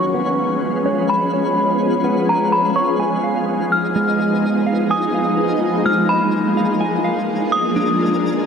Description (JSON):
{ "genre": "hip hop", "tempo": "126 BPM", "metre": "4/4", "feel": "half-time", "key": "unclear", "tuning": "A4 = 440 Hz", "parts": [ { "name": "metallic FM bell", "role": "melody", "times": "0.0-8.2 s", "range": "Bb5 to F6", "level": "-21 LUFS", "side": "left 1 dB", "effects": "chorus, low-pass filter, ping-pong delay" }, { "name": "shimmering ambient pad", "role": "sustained chords", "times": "0.0-8.5 s", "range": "F3 to Ab4", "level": "-19 LUFS", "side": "equal", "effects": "chorus, built-in reverb, phaser, low-pass filter" }, { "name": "direct-recorded clean electric guitar", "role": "arpeggios", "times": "0.0-8.5 s", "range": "Ab3 to Cb6", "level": "-23 LUFS", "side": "right 4 dB", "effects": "low-pass filter, ping-pong delay" }, { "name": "twinkling granular texture", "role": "texture", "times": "0.0-8.5 s", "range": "Db4 to Ab5", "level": "-27 LUFS", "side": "left 1 dB", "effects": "built-in reverb" } ], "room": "moderate lush hall reverb, RT60 2.5 s", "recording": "none", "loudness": "-15 LUFS", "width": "side -6 dB against mid", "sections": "0.0-8.5 A section", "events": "filter sweep 0.0-8.5", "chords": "0.0 Db7; 3.0 Fm7b5; 6.8 Bb7", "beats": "0.14 0.62 | 1.10 1.57 2.05 2.52 | 3.00 3.48 3.95 4.43 | 4.91 5.38 5.86 6.33 | 6.81 7.29 7.76 8.24" }